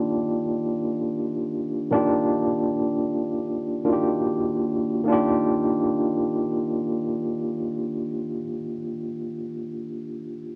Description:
R&B; free time; Eb major; A4 = 437 Hz
barky tine electric piano; solo; 0.0-10.6 s; Eb3 to G4; -25 LUFS; equal; overdrive, fast tremolo, cassette tape
moderate small room reverb, RT60 0.5 s; home recording on cassette; -25 LUFS; mono
0.0-5.1 A section; 5.1-8.4 B section
slowing down 0.0-5.1
0.0 Ebmaj9

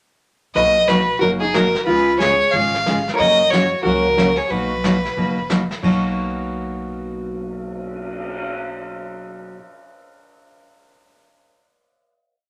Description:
country, western swing; 182 BPM; 4/4; swing 62% on 8ths; B major; A4 = 440 Hz
clear fiddle; melody; 0.5-5.5 s; G#4 to E#5; -19 LUFS; equal
vintage hollow-body jazz guitar; second line; 0.6-5.5 s; D#4 to C#5; -26 LUFS; equal
picked steel-string acoustic guitar; accompaniment; 0.6-9.6 s; B2 to G#4; -25 LUFS; equal
upright bass; bass; 0.6-9.5 s; F#1 to F#2; -35 LUFS; equal
vintage brush drum kit; drums; 0.6-8.4 s; brushed snare drum, crash cymbal, cymbal swell, hi-hat, kick drum, snare drum; -31 LUFS; equal
wet studio reverb, RT60 0.6 s; -19 LUFS; mono
0.6-5.8 A section; 5.8-8.5 final chord
0.6 Bmaj7; 1.9 C#7; 3.2 F#; 4.5 Bmaj7

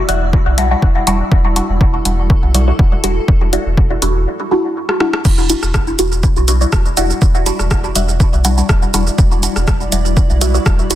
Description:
dub techno; 122 BPM; 4/4; swing 53% on 16ths; E minor; A4 = 440 Hz
granular cloud pad; sustained chords; 0.0-11.0 s; G3 to D5; -26 LUFS; equal; built-in reverb, sidechain pumping
wind-like tuned noise texture; texture; 0.0-4.3 s; E4; -29 LUFS; right 4 dB; built-in reverb, sidechain pumping
filtered dub chord stab; stabs; 0.1-11.0 s; G3 to F#4; -18 LUFS; equal; phaser, sidechain pumping, dub echo
soft dub sub bass; bass; 0.1-11.0 s; E1 to B1; -16 LUFS; equal; tube saturation, sidechain pumping
punchy analog drum machine; drums; 0.1-11.0 s; crash cymbal, hi-hat, rim click, shaker; -20 LUFS; right 1 dB; overdrive, dub echo
electronic kick drum; drums; 0.3-10.8 s; -13 LUFS; equal; overdrive
little or no reverb; dense, heavily limited modern master; -11 LUFS; side -13 dB against mid
0.0-5.2 A section; 5.2-11.0 A section
break 4.3-5.2; drum fill 4.9-5.2
0.0 Em9

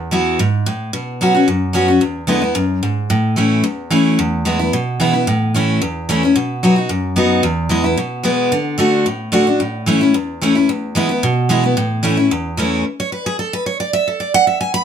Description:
bluegrass; 222 BPM; 4/4; straight; A major; A4 = 440 Hz
picked steel-string acoustic guitar; solo; 0.0-14.8 s; E2 to B5; -14 LUFS; equal
moderate studio reverb, RT60 0.5 s; -14 LUFS; side -8 dB against mid
0.0-4.2 A section; 4.2-12.8 B section; 12.8-14.8 C section
steel-string acoustic guitar solo 12.8-14.8
0.0 Esus2; 0.9 Bsus2; 2.0 E7; 3.1 A; 4.2 E; 5.3 A; 6.3 B; 7.4 E; 8.5 D; 9.6 A; 10.7 E; 11.8 A; 12.8 N.C.

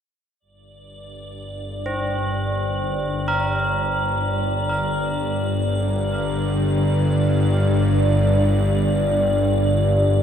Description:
dark ambient drone; free time; G minor; A4 = 440 Hz
bowed-like drone; drone; 1.1-10.2 s; G1 to G2; -20 LUFS; equal; built-in reverb
icy glass pad; texture; 0.9-10.2 s; D5; -26 LUFS; left 1 dB; chorus, built-in reverb
tubular bells; arpeggios; 1.9-10.2 s; C4 to Bb4; -27 LUFS; equal; diffuse ambient delay
wet cathedral reverb, RT60 5.8 s; in a vast, echoing space; -18 LUFS; side -8 dB against mid
0.4-10.2 A section
fade-out on tubular bells 0.4-10.2
0.4 G5

